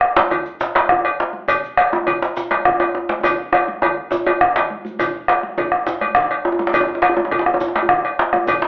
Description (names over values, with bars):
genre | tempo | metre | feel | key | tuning
west african traditional, West African drum ensemble | 137 BPM (dotted quarters) | 12/8 | straight | none | none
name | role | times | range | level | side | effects
bombo | percussion | 0.0-8.6 s | none | -18 LUFS | equal | none
djembe | percussion | 0.0-8.7 s | none | -34 LUFS | left 1 dB | none
congas | percussion | 0.2-8.6 s | none | -32 LUFS | right 1 dB | none
djembe | percussion | 0.2-8.7 s | none | -18 LUFS | equal | none
cowbell | percussion | 0.3-8.6 s | none | -20 LUFS | left 1 dB | none
shekere | percussion | 0.3-8.6 s | none | -40 LUFS | equal | none
room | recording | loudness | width
moderate studio reverb, RT60 0.8 s | band playing live in one room, telephone sound | -15 LUFS | side -25 dB against mid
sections
0.0-5.0 A section; 5.0-8.7 A section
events
drum fill 3.2-5.0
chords
none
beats
0.16 0.60 1.04 | 1.48 1.92 2.36 2.80 | 3.24 3.68 4.12 4.55 | 4.99 5.43 5.87 6.30 | 6.74 7.17 7.61 8.04 | 8.48